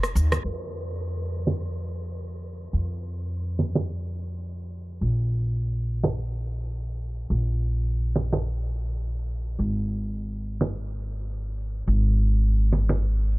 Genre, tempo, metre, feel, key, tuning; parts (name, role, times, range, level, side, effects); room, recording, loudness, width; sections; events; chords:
organic downtempo; 105 BPM; 4/4; swing 58% on 16ths; F minor; A4 = 439 Hz
afro-pop drum kit; drums; 0.0-13.4 s; congas, crash cymbal, hi-hat, rim click, shaker; -28 LUFS; right 2 dB; low-pass filter on hats, small room ambience, low-pass filter on perc, low-pass filter on snare, low-pass filter on cymbals
upright bass; bass; 0.2-13.4 s; Ab1 to F2; -25 LUFS; equal
little or no reverb; dark, warm production, low-pass filter; -24 LUFS; side -22 dB against mid
0.4-13.4 A section
drum fill 0.0-0.4; band accent 0.3